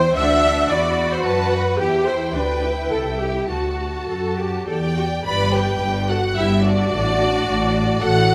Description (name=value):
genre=quick classical-period movement for string orchestra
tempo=101-111 BPM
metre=3/4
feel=rubato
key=G major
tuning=A4 = 440 Hz
part: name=clear symphonic violin section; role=melody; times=0.0-8.3 s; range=D5 to B5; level=-27 LUFS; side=equal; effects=none
part: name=rich symphonic violin section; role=second line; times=0.0-8.3 s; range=F#4 to E5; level=-28 LUFS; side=equal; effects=none
part: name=rich symphonic viola section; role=accompaniment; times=0.0-8.3 s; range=D4 to E5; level=-25 LUFS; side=equal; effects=none
part: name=rich symphonic double bass section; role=bass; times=0.0-8.3 s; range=G1 to F#2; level=-26 LUFS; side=equal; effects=none
part: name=rich symphonic cello section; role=bass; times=0.2-8.3 s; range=G2 to A4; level=-27 LUFS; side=equal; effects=none
room=moderate concert hall reverb, RT60 2.3 s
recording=none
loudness=-20 LUFS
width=mono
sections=0.0-5.3 A section; 5.3-8.3 B section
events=none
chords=0.2 D; 1.8 Em; 2.9 Am/C; 3.5 D; 5.3 G; 6.9 D/A